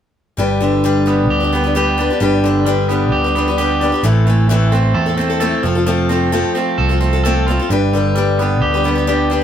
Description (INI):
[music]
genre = rock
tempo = 131 BPM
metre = 4/4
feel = straight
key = G mixolydian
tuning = A4 = 440 Hz
[part]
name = picked acoustic archtop guitar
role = accompaniment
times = 0.4-9.4 s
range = A2 to B4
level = -18 LUFS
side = left 4 dB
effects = none
[part]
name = electric guitar at the edge of break-up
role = riff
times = 0.4-9.4 s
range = G2 to A4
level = -17 LUFS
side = right 2 dB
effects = none
[part]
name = picked electric bass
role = bass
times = 0.4-9.4 s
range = F1 to E2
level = -18 LUFS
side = equal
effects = none
[sound]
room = moderate studio ambience, RT60 0.5 s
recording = band playing live in one room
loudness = -13 LUFS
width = side -9 dB against mid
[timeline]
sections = 0.4-9.4 A section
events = none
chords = 0.4 G; 4.0 Am; 5.6 F; 7.7 G